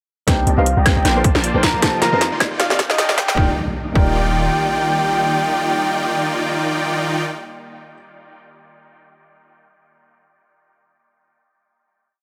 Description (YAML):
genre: future bass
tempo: 155 BPM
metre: 4/4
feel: swing 55% on 16ths, half-time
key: Eb major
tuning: A4 = 440 Hz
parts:
  - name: soft octave-layered synth lead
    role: melody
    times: 0.3-7.2 s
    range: Eb5 to Bb5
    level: -24 LUFS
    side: equal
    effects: chorus, sidechain pumping, dub echo
  - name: felt-muted upright piano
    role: accompaniment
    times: 0.3-7.9 s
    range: Bb3 to D5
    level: -28 LUFS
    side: equal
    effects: sidechain pumping
  - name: ethereal airy pad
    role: sustained chords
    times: 2.1-7.2 s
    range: Eb3 to D5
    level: -34 LUFS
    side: equal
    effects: ensemble chorus, built-in reverb, sidechain pumping
  - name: supersaw chords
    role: riff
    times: 0.3-7.2 s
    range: Eb3 to C6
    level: -24 LUFS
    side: equal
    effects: sidechain pumping, low-pass filter
  - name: long sustained 808-style bass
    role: bass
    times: 0.3-4.5 s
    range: Eb1 to F2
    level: -23 LUFS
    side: equal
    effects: sidechain pumping
  - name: electronic kick drum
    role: drums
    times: 0.3-4.1 s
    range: none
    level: -20 LUFS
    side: equal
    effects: overdrive
  - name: trap drum kit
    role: drums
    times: 0.3-3.4 s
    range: hi-hat, snare drum, woodblock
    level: -21 LUFS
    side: equal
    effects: overdrive, high-pass filter on snare, high-pass filter on hats, high-pass filter on perc, high-pass filter on room
  - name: riser and impact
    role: sound effects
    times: 2.5-7.7 s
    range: none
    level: -32 LUFS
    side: equal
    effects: none
room: light reverb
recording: high-pass filter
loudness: -18 LUFS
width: mono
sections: 0.3-3.4 build; 3.4-6.5 final chord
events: build-up 0.3-3.4; drum fill 0.3-3.4; filter sweep on supersaw synth 0.3-3.4; filter sweep 0.3-3.4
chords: 0.3 Cm7; 1.1 Bbmaj7; 1.8 F7sus4; 2.4 Ebmaj7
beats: | 0.28 0.66 1.05 1.44 | 1.82 2.21 2.60 2.99 | 3.37 3.76 4.15 4.54 | 4.92 5.31 5.70 6.08